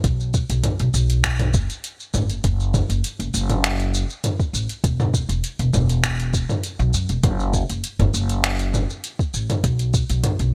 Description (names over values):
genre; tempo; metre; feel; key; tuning
sunset chillout; 100 BPM; 4/4; straight; unclear; A4 = 440 Hz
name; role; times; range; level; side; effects
upright bass; bass; 0.0-10.5 s; E1 to F#2; -23 LUFS; equal; none
deep house drum kit; drums; 0.0-10.5 s; finger snaps, hi-hat, shaker, toms; -26 LUFS; equal; none
electronic kick drum; drums; 0.0-10.1 s; none; -24 LUFS; equal; none
room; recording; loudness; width
little or no reverb; bright 1980s-style digital production; -22 LUFS; mono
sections
0.0-10.5 A section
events
none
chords
none